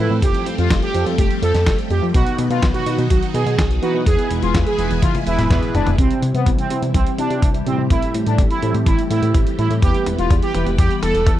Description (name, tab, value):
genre	italo disco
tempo	125 BPM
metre	4/4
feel	straight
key	unclear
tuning	A4 = 441 Hz
part	analog synth brass	melody	0.0-11.3 s	B3 to A4	-22 LUFS	right 2 dB	chorus, cassette tape, tape echo
part	phased string machine	sustained chords	0.0-11.4 s	B2 to B4	-25 LUFS	left 2 dB	ensemble chorus, phaser
part	analog synth brass	stabs	0.0-10.7 s	A2 to C5	-25 LUFS	right 1 dB	chorus
part	chorused synth bass	bass	0.0-11.4 s	E1 to C3	-21 LUFS	equal	none
part	dusty soul sampler-style drum kit	drums	0.2-11.4 s	hi-hat, snare drum, toms	-26 LUFS	equal	high-pass filter on hats, high-pass filter on snare, high-pass filter on toms, high-pass filter on room
part	electronic kick drum	drums	0.2-11.4 s	none	-18 LUFS	equal	none
room	little or no reverb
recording	dry, close 1970s-style studio recording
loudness	-15 LUFS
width	side -13 dB against mid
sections	0.0-6.0 A section; 6.0-11.4 B section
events	filter sweep on analog polysynth 0.0-6.0; drum fill 5.0-6.0, 6.0-11.4; band accent 5.5; filter sweep on string machine 6.0-11.4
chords	0.2 Fadd9; 2.1 B; 4.1 E; 6.0 C; 7.9 Am7; 9.8 Em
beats	| 0.22 0.70 1.18 1.66 | 2.14 2.62 3.10 3.58 | 4.06 4.54 5.02 5.50 | 5.98 6.46 6.94 7.42 | 7.90 8.38 8.86 9.34 | 9.82 10.30 10.78 11.26